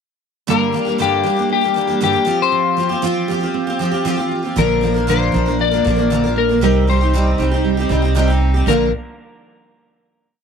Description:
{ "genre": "acoustic pop", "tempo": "117 BPM", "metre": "4/4", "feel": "straight", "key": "Bb major", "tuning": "A4 = 441 Hz", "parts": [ { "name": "electric slide guitar", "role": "melody", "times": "0.5-8.9 s", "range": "G4 to D5", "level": "-18 LUFS", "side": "left 10 dB", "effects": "none" }, { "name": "picked steel-string acoustic guitar", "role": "accompaniment", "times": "0.5-8.9 s", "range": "G2 to Bb4", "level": "-19 LUFS", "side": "right 1 dB", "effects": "double-tracked left and right" }, { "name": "nylon-string guitar", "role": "arpeggios", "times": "0.5-8.9 s", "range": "F3 to G4", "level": "-23 LUFS", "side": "right 12 dB", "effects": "none" }, { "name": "upright bass", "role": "bass", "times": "4.6-8.9 s", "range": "Bb1 to C2", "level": "-18 LUFS", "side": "right 1 dB", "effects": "none" } ], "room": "light reverb, small room ambience", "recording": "1960s-style stereo with parts hard left and right", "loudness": "-14 LUFS", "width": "side -6 dB against mid", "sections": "0.5-8.7 verse; 8.7-10.4 final chord", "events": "none", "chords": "0.5 Gm; 2.3 Fsus2; 4.6 Bb; 6.6 Cm; 8.7 Bb" }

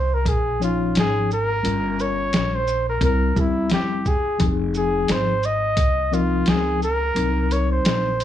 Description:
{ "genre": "hip hop, jazz-hop", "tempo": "87 BPM", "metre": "4/4", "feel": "swing 57% on 16ths", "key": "unclear", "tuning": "A4 = 440 Hz", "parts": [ { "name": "trumpet with bucket mute", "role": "melody", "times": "0.0-8.2 s", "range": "E4 to Eb5", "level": "-23 LUFS", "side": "equal", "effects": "none" }, { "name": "upright bass", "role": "bass", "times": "0.0-8.2 s", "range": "F1 to Db2", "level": "-25 LUFS", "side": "equal", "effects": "none" }, { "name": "lo-fi sampler-style drum kit", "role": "drums", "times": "0.3-8.2 s", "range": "hi-hat, kick drum, shaker, snare drum", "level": "-23 LUFS", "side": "equal", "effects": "none" }, { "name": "mellow tine electric piano", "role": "accompaniment", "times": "0.6-8.1 s", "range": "F3 to Db5", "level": "-24 LUFS", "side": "left 5 dB", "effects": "medium stereo tremolo" } ], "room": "little or no reverb", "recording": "small room reverb", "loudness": "-18 LUFS", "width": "side -11 dB against mid", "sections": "0.0-8.2 A section", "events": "none", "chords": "0.0 Dbmaj9; 1.6 Gm7b5; 3.0 C7; 4.4 Fm7; 7.2 Cm7b5" }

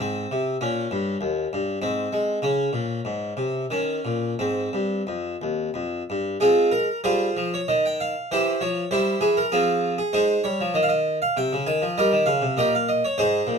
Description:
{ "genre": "classical, baroque-style suite movement for harpsichord", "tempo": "87-100 BPM", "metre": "3/4", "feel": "rubato", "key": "Ab major", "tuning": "A4 = 440 Hz", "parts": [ { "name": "harpsichord", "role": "solo", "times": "0.0-13.6 s", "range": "Eb2 to Ab5", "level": "-21 LUFS", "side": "equal", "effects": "none" } ], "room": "light reverb", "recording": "dark, warm production", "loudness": "-21 LUFS", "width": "side -6 dB against mid", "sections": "0.0-6.4 A section; 6.4-13.6 A section", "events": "none", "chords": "0.0 Ab; 0.6 Eb7; 1.8 Ab; 2.4 Db5; 3.7 Eb5; 4.4 Ab; 8.3 C7b9b13/E; 9.5 Fm; 10.1 Ab; 12.0 Eb7" }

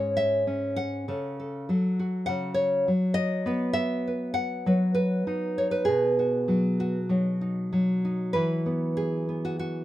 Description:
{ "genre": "folk, solo fingerstyle acoustic guitar", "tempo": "99 BPM", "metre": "4/4", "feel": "rubato", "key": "E major", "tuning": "A4 = 438 Hz", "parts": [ { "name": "nylon-string guitar", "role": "solo", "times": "0.0-9.8 s", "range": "G#2 to F#5", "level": "-24 LUFS", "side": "equal", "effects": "none" } ], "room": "moderate studio ambience, RT60 0.5 s", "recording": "minimal, uncompressed stereo recording", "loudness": "-24 LUFS", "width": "side -14 dB against mid", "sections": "0.0-8.3 A section; 8.3-9.8 B section", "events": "none", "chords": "0.0 C#m; 1.1 F#m/C#; 3.5 B; 8.3 Esus2" }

